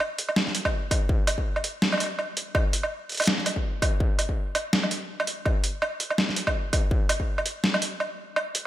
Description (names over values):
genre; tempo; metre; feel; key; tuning
drum and bass; 165 BPM; 4/4; swing 58% on 16ths, half-time; none; none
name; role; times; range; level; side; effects
boom bap sampler-style drum kit; drums; 0.0-8.6 s; hi-hat, snare drum, woodblock; -25 LUFS; right 1 dB; overdrive, studio ambience, gated reverb
electronic kick drum; drums; 0.7-7.3 s; none; -25 LUFS; equal; distortion, studio ambience
room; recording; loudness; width
moderate plate reverb, RT60 1.8 s; bright 1980s-style digital production; -23 LUFS; side -14 dB against mid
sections
0.0-8.7 A section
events
kick drops out 8.4-8.7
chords
none